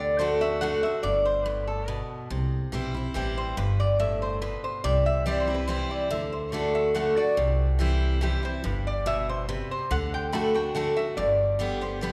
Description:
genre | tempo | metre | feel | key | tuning
bluegrass | 142 BPM | 3/4 | straight | G major | A4 = 440 Hz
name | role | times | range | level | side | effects
lap resonator guitar | melody | 0.0-12.1 s | G4 to B5 | -30 LUFS | equal | none
picked steel-string acoustic guitar | accompaniment | 0.0-12.1 s | G2 to G4 | -31 LUFS | equal | none
upright bass | bass | 0.0-12.1 s | G1 to D2 | -32 LUFS | equal | none
room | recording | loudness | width
wet concert hall reverb, RT60 2.2 s | recorded in a church or concert hall | -26 LUFS | mono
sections
0.0-2.3 A section; 2.3-12.1 B section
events
none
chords
0.0 D; 1.0 G; 2.3 C; 3.6 G; 4.8 C; 6.1 D; 7.4 C; 8.6 G; 9.9 D; 11.2 G

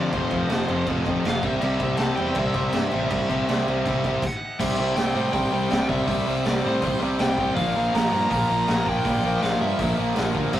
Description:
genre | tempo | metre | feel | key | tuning
punk rock | 162 BPM | 4/4 | straight | unclear | A4 = 440 Hz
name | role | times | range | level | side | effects
bluesy overdriven lead guitar | melody | 0.0-10.6 s | C5 to Bb5 | -28 LUFS | right 1 dB | distortion
biting overdriven guitar | riff | 0.0-10.6 s | F2 to C4 | -26 LUFS | right 3 dB | none
cranked stack guitar | riff | 0.0-10.6 s | F2 to C4 | -27 LUFS | left 5 dB | overdrive
fuzz picked electric bass | bass | 0.0-10.6 s | F1 to A2 | -30 LUFS | equal | overdrive
raw garage drum kit | drums | 0.1-10.6 s | crash cymbal, hi-hat, kick drum, snare drum | -28 LUFS | equal | none
room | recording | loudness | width
moderate booth ambience, RT60 0.2 s | rough rehearsal-room recording, tube saturation | -20 LUFS | side -12 dB against mid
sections
0.0-4.6 A section; 4.6-10.6 B section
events
stop 4.2-4.6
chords
0.0 F5; 1.4 C; 7.6 Bb5

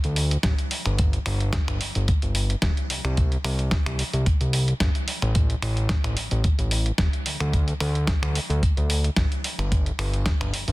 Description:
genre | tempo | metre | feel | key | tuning
nu-disco, nu disco | 110 BPM | 4/4 | swing 53% on 16ths | unclear | A4 = 440 Hz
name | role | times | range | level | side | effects
fat analog bass | bass | 0.0-10.7 s | D1 to D2 | -24 LUFS | equal | sidechain pumping
dusty soul sampler-style drum kit | drums | 0.0-10.7 s | finger snaps, hi-hat, snare drum | -28 LUFS | equal | none
electronic kick drum | drums | 0.4-10.4 s | none | -23 LUFS | equal | none
room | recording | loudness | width
little or no reverb | dense, heavily limited modern master | -21 LUFS | side -20 dB against mid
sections
0.0-10.7 A section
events
none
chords
none

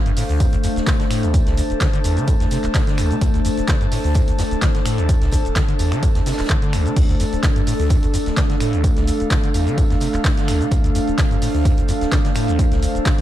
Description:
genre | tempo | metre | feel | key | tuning
acid house | 128 BPM | 4/4 | swing 54% on 16ths | D minor | A4 = 440 Hz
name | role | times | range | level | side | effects
warbly tape-like pad | sustained chords | 0.0-13.2 s | A3 to C5 | -26 LUFS | left 4 dB | chorus, built-in reverb, sidechain pumping
airy breathy pad | texture | 0.0-13.2 s | D4 to A5 | -25 LUFS | right 2 dB | chorus, sidechain pumping
acid bass, saw | riff | 0.1-13.2 s | D1 to D3 | -22 LUFS | equal | overdrive, lush chorus, vintage 12-bit sampler grit, sidechain pumping
punchy analog drum machine | drums | 0.1-13.2 s | crash cymbal, finger snaps, handclaps, hi-hat, shaker | -28 LUFS | equal | none
vintage drum kit | drums | 0.2-13.2 s | hi-hat, snare drum, tambourine | -38 LUFS | right 2 dB | none
electronic kick drum | drums | 0.4-13.2 s | none | -18 LUFS | equal | none
room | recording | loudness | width
light reverb | dark, warm production | -16 LUFS | side -13 dB against mid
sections
0.0-13.2 A section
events
none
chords
0.0 Dm7

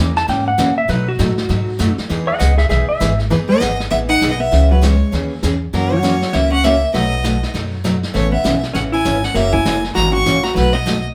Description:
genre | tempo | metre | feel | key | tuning
country, western swing | 198 BPM | 4/4 | swing 61% on 8ths | E major | A4 = 440 Hz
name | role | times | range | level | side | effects
picked steel-string acoustic guitar | accompaniment | 0.0-11.0 s | B2 to G#4 | -24 LUFS | equal | none
upright bass | bass | 0.0-11.0 s | F#1 to B2 | -21 LUFS | equal | none
clean lap steel guitar | second line | 0.2-3.2 s | F#4 to A5 | -21 LUFS | equal | none
vintage brush drum kit | drums | 0.2-11.1 s | brushed snare drum, hi-hat, kick drum, snare drum | -28 LUFS | equal | none
clear fiddle | melody | 3.3-11.0 s | A#4 to C#6 | -21 LUFS | equal | none
hollow-body jazz guitar | second line | 3.3-11.0 s | E3 to F#4 | -22 LUFS | equal | none
room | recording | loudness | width
moderate studio reverb, RT60 0.6 s | band playing live in one room | -16 LUFS | mono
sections
0.0-3.3 A section; 3.3-11.1 B section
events
electric slide guitar solo 0.0-3.3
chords
0.0 F#7; 0.9 B7; 2.1 Emaj7; 4.5 C#m7; 5.7 F#7; 6.9 B7; 8.1 Aadd9; 9.4 F#7; 10.6 B7

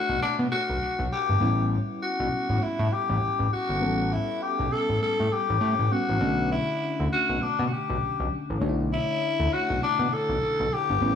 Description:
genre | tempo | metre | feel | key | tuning
R&B, new jack swing | 100 BPM | 4/4 | swing 61% on 16ths | B minor | A4 = 440 Hz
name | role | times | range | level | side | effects
raspy tenor saxophone | melody | 0.0-11.2 s | D4 to A4 | -26 LUFS | left 3 dB | none
mellow FM electric piano | accompaniment | 0.0-11.2 s | D3 to F#5 | -31 LUFS | left 1 dB | chorus, tremolo
fat analog bass | bass | 0.1-11.2 s | G1 to B2 | -26 LUFS | equal | none
room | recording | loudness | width
light reverb, studio ambience | small room ambience | -23 LUFS | side -8 dB against mid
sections
0.0-11.2 A section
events
none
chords
0.0 Bm7; 1.4 A7; 6.2 Bm7

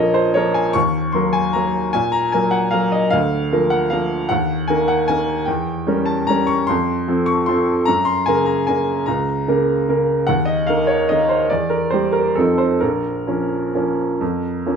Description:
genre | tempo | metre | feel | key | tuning
classical, piano waltz | 126-160 BPM | 3/4 | rubato | Bb minor | A4 = 440 Hz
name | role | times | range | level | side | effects
bright upright piano | solo | 0.0-14.8 s | Bb1 to Db6 | -16 LUFS | equal | none
room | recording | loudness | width
wet stone room reverb, RT60 1.1 s | close, detailed microphones | -16 LUFS | side -6 dB against mid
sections
0.0-14.8 A section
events
none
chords
0.0 Bbm; 0.8 Ebm; 3.1 Bb/D; 4.3 Ebm; 5.5 Edim7; 6.7 F; 7.9 Gb; 10.3 Eb5; 11.5 Em7b5; 12.4 F7; 12.8 Bbm

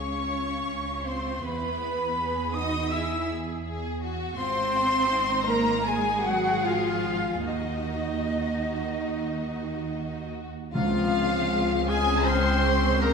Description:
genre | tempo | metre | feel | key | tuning
cinematic, emotional film score for orchestra | 72-82 BPM | 4/4 | rubato | Db major | A4 = 441 Hz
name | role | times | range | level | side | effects
rich studio violin section | melody | 0.0-13.1 s | Eb4 to C6 | -33 LUFS | left 4 dB | none
silver concert flute | second line | 0.0-13.1 s | Eb5 to F6 | -30 LUFS | left 1 dB | none
warm studio violin section | second line | 0.0-13.1 s | F4 to E6 | -35 LUFS | left 2 dB | none
rich studio viola section | accompaniment | 0.0-13.1 s | Ab3 to E5 | -32 LUFS | equal | none
rich studio cello section | bass | 0.0-13.1 s | Db2 to E4 | -32 LUFS | right 2 dB | none
warm studio double bass section | bass | 0.0-13.1 s | Ab1 to E2 | -31 LUFS | right 2 dB | none
bright clarinet | second line | 10.7-13.1 s | F4 to C5 | -31 LUFS | left 2 dB | none
clear cor anglais | second line | 10.7-13.1 s | F4 to C5 | -32 LUFS | right 2 dB | none
timpani | percussion | 10.7-11.8 s | Db3 | -30 LUFS | equal | none
clear French horn section | sustained chords | 10.8-13.1 s | F3 to C4 | -31 LUFS | left 5 dB | none
room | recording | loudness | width
wet scoring stage reverb, RT60 2.0 s | heard from further back in the room | -24 LUFS | side -5 dB against mid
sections
0.0-10.7 A section; 10.7-13.1 B section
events
none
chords
0.0 Dbmaj7; 1.4 Eadd9; 4.4 Ab7; 7.5 Ebm; 10.7 Dbmaj7

